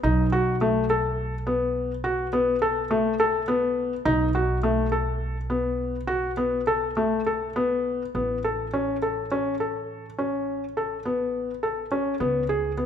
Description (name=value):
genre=contemporary instrumental, chamber music in an uneven meter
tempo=104 BPM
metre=7/4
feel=straight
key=A lydian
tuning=A4 = 441 Hz
part: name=felt-muted upright piano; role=arpeggios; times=0.0-12.9 s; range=A3 to A4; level=-24 LUFS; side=left 1 dB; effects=none
part: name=upright bass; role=bass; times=0.0-12.9 s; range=A1 to C#2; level=-30 LUFS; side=right 1 dB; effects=none
room=moderate recital hall reverb, RT60 1.6 s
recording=none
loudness=-23 LUFS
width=side -8 dB against mid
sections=0.0-8.1 A section; 8.1-12.9 B section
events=none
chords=0.0 B7(no3); 8.1 Aadd9; 12.2 C#5